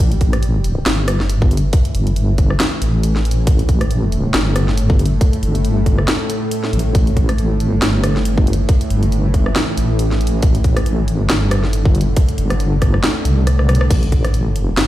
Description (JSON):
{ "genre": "deep dubstep", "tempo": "138 BPM", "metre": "4/4", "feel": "swing 56% on 16ths, half-time", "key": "unclear", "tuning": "A4 = 440 Hz", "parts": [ { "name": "bowed-like drone", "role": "sustained chords", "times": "0.0-14.9 s", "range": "A2 to A3", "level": "-23 LUFS", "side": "equal", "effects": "built-in reverb" }, { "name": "deep soft wobble bass", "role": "bass", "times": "0.0-14.9 s", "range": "G1 to C2", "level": "-16 LUFS", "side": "equal", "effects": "chorus" }, { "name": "garage drum kit", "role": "drums", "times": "0.1-14.9 s", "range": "crash cymbal, hi-hat, rim click, snare drum", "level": "-21 LUFS", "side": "equal", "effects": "none" }, { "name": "electronic kick drum", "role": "drums", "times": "0.2-14.2 s", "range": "none", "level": "-14 LUFS", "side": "equal", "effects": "none" } ], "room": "light reverb, digital ambience", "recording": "played on a big sound system in a bare room, stone room reverb", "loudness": "-13 LUFS", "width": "side -14 dB against mid", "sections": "0.0-14.9 A section", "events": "drum fill 13.5-13.9", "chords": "0.0 A5" }